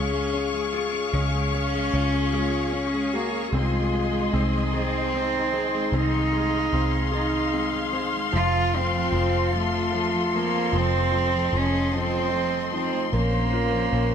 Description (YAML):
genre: pop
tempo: 50 BPM (dotted quarters)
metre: 6/8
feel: straight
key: Db major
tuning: A4 = 442 Hz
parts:
  - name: warm cello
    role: melody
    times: 0.0-14.1 s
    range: Ab3 to F4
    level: -26 LUFS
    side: right 2 dB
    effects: digital delay
  - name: dark French horn section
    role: second line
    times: 0.0-14.1 s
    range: Db4 to Ab4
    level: -32 LUFS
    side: left 5 dB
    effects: none
  - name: felt-muted upright piano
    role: accompaniment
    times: 0.0-14.1 s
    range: F3 to Ab4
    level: -32 LUFS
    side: left 2 dB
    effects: none
  - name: warm studio string section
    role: sustained chords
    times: 0.0-14.1 s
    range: Ab4 to Db6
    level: -29 LUFS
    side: left 4 dB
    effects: none
  - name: fingerpicked steel-string acoustic guitar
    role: arpeggios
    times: 0.0-14.1 s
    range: Eb3 to F4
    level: -34 LUFS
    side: right 3 dB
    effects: none
  - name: vintage muted fingered electric bass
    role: bass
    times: 0.0-14.1 s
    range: F1 to Db2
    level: -27 LUFS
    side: equal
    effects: none
room: light reverb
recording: none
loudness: -21 LUFS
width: side -8 dB against mid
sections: 0.0-14.1 A section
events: none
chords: 0.0 Db; 3.5 Ab/C; 8.3 F; 13.1 Bbmadd9